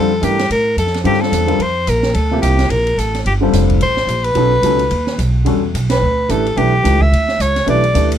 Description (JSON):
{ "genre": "modal jazz", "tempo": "218 BPM", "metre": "4/4", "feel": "swing 58% on 8ths", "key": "G dorian", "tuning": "A4 = 439 Hz", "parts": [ { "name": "breathy soprano saxophone", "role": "melody", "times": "0.0-8.1 s", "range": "G4 to E5", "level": "-16 LUFS", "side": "equal", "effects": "none" }, { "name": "warm upright piano", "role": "accompaniment", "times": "0.0-8.1 s", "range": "C3 to B4", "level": "-17 LUFS", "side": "left 2 dB", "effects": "none" }, { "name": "upright bass", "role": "bass", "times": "0.0-8.2 s", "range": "F1 to A2", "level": "-16 LUFS", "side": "right 1 dB", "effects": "none" }, { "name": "open jazz drum kit", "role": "drums", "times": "0.2-8.2 s", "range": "hi-hat, kick drum, ride cymbal, snare drum", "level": "-25 LUFS", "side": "right 3 dB", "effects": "none" } ], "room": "light reverb", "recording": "none", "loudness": "-13 LUFS", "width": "side -10 dB against mid", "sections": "0.0-5.5 A section; 5.5-8.2 B section", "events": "band accent 5.9", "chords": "0.0 Gm9; 3.3 F; 4.4 B7; 5.5 Em7" }